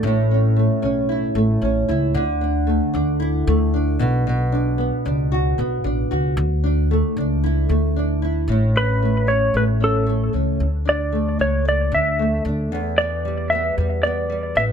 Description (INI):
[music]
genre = acoustic pop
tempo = 114 BPM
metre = 4/4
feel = swing 55% on 16ths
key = D major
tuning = A4 = 439 Hz
[part]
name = nylon-string guitar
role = accompaniment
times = 0.0-14.7 s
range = E2 to F#4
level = -21 LUFS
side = right 1 dB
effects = double-tracked left and right
[part]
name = upright bass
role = bass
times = 0.0-14.7 s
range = A1 to E2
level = -21 LUFS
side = equal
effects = none
[part]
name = clean lap steel guitar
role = melody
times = 8.8-14.6 s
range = A4 to E5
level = -21 LUFS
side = equal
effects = tape echo
[sound]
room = light reverb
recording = none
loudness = -17 LUFS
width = side -7 dB against mid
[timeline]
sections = 0.0-8.5 A section; 8.5-14.7 B section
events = none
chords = 0.0 A; 2.1 Dsus2; 4.0 Bm; 6.4 Dsus2; 8.5 A; 10.6 D5; 12.7 Em